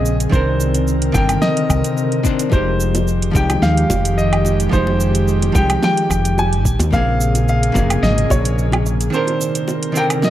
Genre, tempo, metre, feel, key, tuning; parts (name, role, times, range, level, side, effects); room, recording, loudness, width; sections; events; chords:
sunset chillout; 109 BPM; 4/4; swing 53% on 16ths; F minor; A4 = 440 Hz
clear concert grand piano; melody; 0.0-10.3 s; C5 to Ab5; -22 LUFS; equal; digital delay
archtop guitar, miked and amplified; accompaniment; 0.0-10.3 s; C3 to C5; -22 LUFS; moving between left 4 dB and right 5 dB; auto-pan
airy breathy pad; sustained chords; 0.0-10.3 s; Bb2 to Bb4; -22 LUFS; equal; chorus
woody fretless electric bass; bass; 0.0-9.1 s; F1 to Eb2; -18 LUFS; equal
smooth R&B drum kit; drums; 0.1-10.3 s; hi-hat, shaker, snare drum, woodblock; -23 LUFS; right 2 dB; overdrive
electronic kick drum; drums; 0.3-8.4 s; -18 LUFS; equal; overdrive
bongos; percussion; 2.5-10.3 s; -28 LUFS; right 1 dB
light reverb, digital ambience; dark, warm production; -14 LUFS; side -12 dB against mid
0.0-10.3 A section
0.3 Cm9; 2.5 Fm9; 6.7 Bbm9; 9.1 Cm9